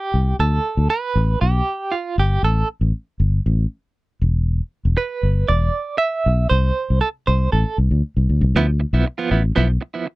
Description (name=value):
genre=disco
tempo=117 BPM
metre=4/4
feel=straight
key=D dorian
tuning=A4 = 438 Hz
part: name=clean electric guitar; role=accompaniment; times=0.0-10.1 s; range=F3 to E5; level=-21 LUFS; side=right 4 dB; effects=tremolo
part: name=fingered electric bass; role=bass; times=0.1-9.8 s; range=E1 to D2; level=-17 LUFS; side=left 1 dB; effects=none
room=little or no reverb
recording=dry, close 1970s-style studio recording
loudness=-17 LUFS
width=side -19 dB against mid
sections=0.0-8.6 A section; 8.6-10.2 B section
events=clean electric guitar solo 0.0-8.6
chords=0.4 D5; 2.4 N.C.; 4.2 E7(no3); 6.5 Am; 8.6 Dm69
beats=| 0.39 0.90 1.41 1.92 | 2.43 2.94 3.45 3.96 | 4.48 4.99 5.50 6.01 | 6.52 7.03 7.54 8.05 | 8.56 9.07 9.58 10.09